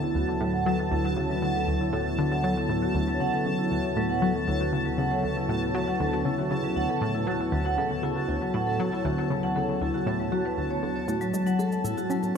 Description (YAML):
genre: ambient, sequencer-driven space music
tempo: 118 BPM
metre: 4/4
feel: straight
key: unclear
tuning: A4 = 440 Hz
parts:
  - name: sweeping resonant pad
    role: sustained chords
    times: 0.0-12.4 s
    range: D2 to C#5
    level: -29 LUFS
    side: equal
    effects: chorus
  - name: vibraphone with medium hard mallets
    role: arpeggios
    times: 0.0-12.3 s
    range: F#3 to F#5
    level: -30 LUFS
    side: right 1 dB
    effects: auto-pan, low-pass filter, ping-pong delay
  - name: bubbling stepped-filter texture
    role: texture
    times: 0.0-12.4 s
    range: A5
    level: -34 LUFS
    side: equal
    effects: chorus, built-in reverb
  - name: tight sequenced synth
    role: riff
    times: 0.2-12.3 s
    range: D2 to C#4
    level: -29 LUFS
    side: left 1 dB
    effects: chorus, ping-pong delay
  - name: cabasa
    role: percussion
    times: 11.1-12.3 s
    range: none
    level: -44 LUFS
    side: right 2 dB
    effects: overdrive
room: wet cathedral reverb, RT60 5.6 s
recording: in a vast, echoing space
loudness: -24 LUFS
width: side -7 dB against mid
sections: 0.0-12.4 A section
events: filter sweep on vibraphone 0.0-12.4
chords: 0.0 D6; 11.1 Aadd9